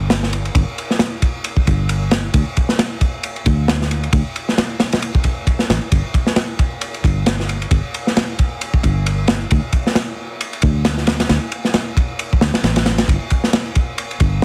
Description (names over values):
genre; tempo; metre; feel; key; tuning
breakbeat, breaks; 134 BPM; 4/4; swing 57% on 16ths; unclear; A4 = 441 Hz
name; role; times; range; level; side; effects
fingered electric bass; bass; 0.0-14.4 s; G1 to D2; -20 LUFS; equal; none
crunchy breakbeat drum kit; drums; 0.1-14.4 s; kick drum, ride cymbal, snare drum; -19 LUFS; equal; none
room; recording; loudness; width
little or no reverb; heavily compressed radio sound, multiband compression; -18 LUFS; mono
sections
0.0-14.4 A section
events
none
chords
none